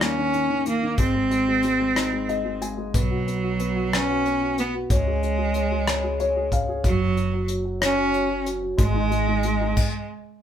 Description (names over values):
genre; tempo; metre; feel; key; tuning
six-eight pop ballad; 62 BPM (dotted quarters); 6/8; straight; unclear; A4 = 440 Hz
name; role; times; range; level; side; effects
bright cello; melody; 0.0-10.1 s; F#3 to C#4; -24 LUFS; right 2 dB; none
dark upright piano; accompaniment; 0.0-9.8 s; D#3 to G#5; -28 LUFS; left 3 dB; none
upright bass; bass; 0.0-9.7 s; F#1 to D#2; -29 LUFS; equal; none
soft brush drum kit; drums; 0.0-9.9 s; crash cymbal, hi-hat, kick drum, rim click; -25 LUFS; equal; none
room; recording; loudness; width
moderate studio ambience, RT60 0.4 s; band playing live in one room; -20 LUFS; side -9 dB against mid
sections
0.0-10.4 A section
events
upright piano fill 2.0-2.9, 5.9-6.8; stop 9.8-10.4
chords
0.0 D#7(no3); 1.0 G#; 2.9 Bsus2; 4.9 C#5; 6.8 F#5; 8.8 G#5; 9.8 N.C.